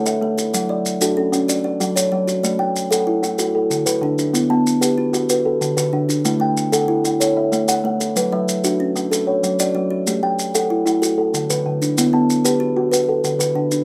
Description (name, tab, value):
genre	southern african traditional, mbira-style interlocking cycle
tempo	126 BPM (dotted quarters)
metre	12/8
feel	straight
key	A mixolydian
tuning	A4 = 441 Hz
part	kalimba	arpeggios	0.0-13.8 s	D3 to A5	-21 LUFS	equal	none
part	kalimba	arpeggios	0.0-13.8 s	D3 to F#5	-24 LUFS	equal	none
part	maracas	percussion	0.1-13.8 s	none	-26 LUFS	equal	none
room	wet studio reverb, RT60 0.6 s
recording	rough home demo mix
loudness	-19 LUFS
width	mono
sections	0.0-2.4 A section; 2.4-13.8 B section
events	none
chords	0.0 A5; 0.5 F#m; 2.4 A5; 3.4 D; 4.3 Bm; 5.3 D; 6.2 A; 8.2 F#m; 10.1 A5; 11.0 D; 12.0 Bm; 12.9 D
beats	0.06 | 0.53 1.01 1.48 1.96 | 2.43 2.91 3.38 3.86 | 4.34 4.82 5.29 5.77 | 6.25 6.73 7.21 7.68 | 8.16 8.64 9.12 9.59 | 10.07 10.55 11.02 11.50 | 11.97 12.45 12.92 13.40